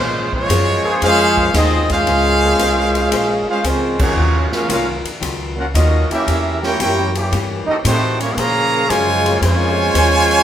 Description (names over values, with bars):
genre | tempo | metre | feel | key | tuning
jazz, big band swing | 114 BPM | 4/4 | swing 68% on 8ths | Bb minor | A4 = 440 Hz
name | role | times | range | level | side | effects
clear trumpet section | melody | 0.0-10.4 s | Ab3 to Bb5 | -17 LUFS | equal | none
clear trombone section | second line | 0.0-10.4 s | Db3 to G4 | -20 LUFS | right 1 dB | none
archtop guitar, miked and amplified | accompaniment | 0.0-10.3 s | Eb3 to C5 | -26 LUFS | left 3 dB | none
upright bass | bass | 0.0-10.4 s | Bb1 to Bb2 | -20 LUFS | equal | none
swinging big-band drum kit | drums | 0.3-10.4 s | crash cymbal, hi-hat, kick drum, ride cymbal, snare drum | -24 LUFS | left 1 dB | none
dark trombone section | sustained chords | 0.8-9.9 s | Db3 to C5 | -25 LUFS | left 1 dB | none
room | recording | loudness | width
wet large studio reverb, RT60 1.2 s | band playing live in one room | -13 LUFS | side -10 dB against mid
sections
0.0-10.4 A section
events
band accent 3.9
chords
0.0 Bbm9; 4.2 Ebm9; 6.3 Edim7; 8.4 Bbm9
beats
0.50 1.02 1.55 | 2.07 2.60 3.12 3.65 | 4.17 4.70 5.22 5.75 | 6.27 6.80 7.32 7.85 | 8.37 8.90 9.43 9.95